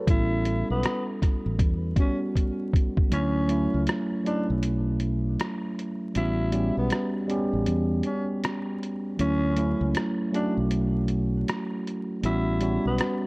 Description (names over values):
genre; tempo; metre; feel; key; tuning
lo-fi hip hop; 79 BPM; 4/4; swing 63% on 16ths; D major; A4 = 445 Hz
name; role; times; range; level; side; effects
mellow tine electric piano; accompaniment; 0.0-13.3 s; F#3 to A4; -27 LUFS; right 1 dB; cassette tape, low-pass filter
growling tenor saxophone; melody; 0.1-13.2 s; B3 to E4; -31 LUFS; equal; low-pass filter
fingered electric bass; bass; 0.1-13.0 s; A1 to E2; -27 LUFS; equal; none
lo-fi sampler-style drum kit; drums; 0.1-13.2 s; hi-hat, kick drum, rim click; -26 LUFS; equal; vintage 12-bit sampler grit
room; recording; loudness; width
light reverb, digital ambience; dark, warm production, vinyl crackle; -23 LUFS; side -25 dB against mid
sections
0.0-3.1 A section; 3.1-13.3 B section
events
drum fill 2.4-3.1; kick muted 3.1-13.3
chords
0.1 A9; 3.1 Dmaj9; 6.2 A13; 9.2 Dmaj9; 12.2 A13